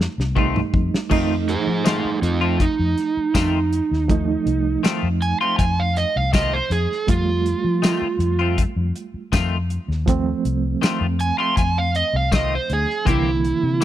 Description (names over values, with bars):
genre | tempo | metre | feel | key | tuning
straight-eighth soul blues | 80 BPM | 4/4 | straight | F mixolydian | A4 = 441 Hz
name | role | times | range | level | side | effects
barky reed electric piano | accompaniment | 0.0-13.8 s | D3 to F4 | -26 LUFS | right 7 dB | overdrive, fast tremolo
vintage muted fingered electric bass | bass | 0.0-13.8 s | C2 to F3 | -22 LUFS | left 1 dB | none
warm soul drum kit | drums | 0.0-13.8 s | crash cymbal, hi-hat, kick drum, snare drum, tambourine, toms | -22 LUFS | left 1 dB | none
clean electric guitar | stabs | 0.4-13.8 s | Eb3 to G4 | -26 LUFS | left 8 dB | analog chorus
overdriven slide guitar | second line | 1.5-13.8 s | C4 to C6 | -22 LUFS | right 4 dB | none
room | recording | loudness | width
small room ambience | dry, close 1970s-style studio recording | -18 LUFS | side -12 dB against mid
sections
0.0-1.1 A section; 1.1-13.8 A section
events
drum fill 0.0-1.1; electric slide guitar solo 1.1-13.8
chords
0.0 F7; 13.1 C7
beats
0.36 | 1.11 1.86 2.60 3.35 | 4.10 4.84 5.59 6.34 | 7.08 7.83 8.58 9.33 | 10.07 10.82 11.57 12.32 | 13.06 13.81